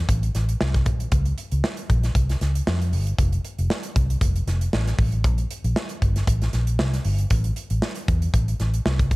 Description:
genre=polished 1980s jazz-funk pop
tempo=116 BPM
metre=4/4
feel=swing 54% on 16ths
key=unclear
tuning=A4 = 440 Hz
part: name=vintage muted fingered electric bass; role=bass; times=0.0-9.2 s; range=F1 to F2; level=-22 LUFS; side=equal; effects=none
part: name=modern studio drum kit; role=drums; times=0.1-9.2 s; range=hi-hat, kick drum, snare drum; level=-24 LUFS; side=equal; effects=none
room=little or no reverb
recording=none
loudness=-20 LUFS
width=side -22 dB against mid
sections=0.0-9.2 A section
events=none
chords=none

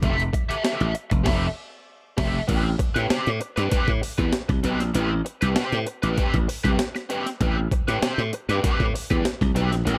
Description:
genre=funk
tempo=98 BPM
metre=4/4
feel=straight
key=A minor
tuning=A4 = 440 Hz
part: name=crunchy overdriven guitar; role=accompaniment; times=0.0-10.0 s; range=C4 to E5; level=-29 LUFS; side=equal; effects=wah
part: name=glassy slap bass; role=bass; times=0.0-10.0 s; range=F1 to A2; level=-26 LUFS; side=equal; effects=none
part: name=breakbeat sampler-style drum kit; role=drums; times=0.0-10.0 s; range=crash cymbal, hi-hat, kick drum, snare drum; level=-27 LUFS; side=equal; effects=none
room=little or no reverb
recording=none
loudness=-24 LUFS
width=mono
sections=0.0-2.5 A section; 2.5-10.0 B section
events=band accent 1.3-2.5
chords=0.0 Fmaj9; 2.5 Am9

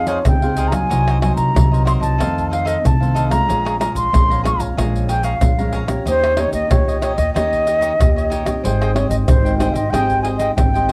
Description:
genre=samba and choro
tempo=93 BPM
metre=4/4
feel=straight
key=F minor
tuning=A4 = 441 Hz
part: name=mellow concert flute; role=melody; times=0.0-10.9 s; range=C5 to Db6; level=-22 LUFS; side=equal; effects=cassette tape
part: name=cavaquinho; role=accompaniment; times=0.0-10.9 s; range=Eb4 to Bb5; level=-29 LUFS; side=equal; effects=cassette tape
part: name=nylon-string guitar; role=accompaniment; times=0.0-10.9 s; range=F2 to Ab4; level=-26 LUFS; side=equal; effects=cassette tape
part: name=upright bass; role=bass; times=0.0-10.9 s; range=Ab1 to F2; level=-23 LUFS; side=equal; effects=none
part: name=tube shaker, pandeiro, surdo and tamborim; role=percussion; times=0.1-10.9 s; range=none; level=-22 LUFS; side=equal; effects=none
room=moderate small room reverb, RT60 0.6 s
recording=home recording on cassette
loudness=-17 LUFS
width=mono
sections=0.0-10.9 A section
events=none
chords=0.0 Fm7; 0.9 Cm7b5; 2.2 F7; 3.5 Bbm7; 6.1 Eb7; 8.6 Abmaj7

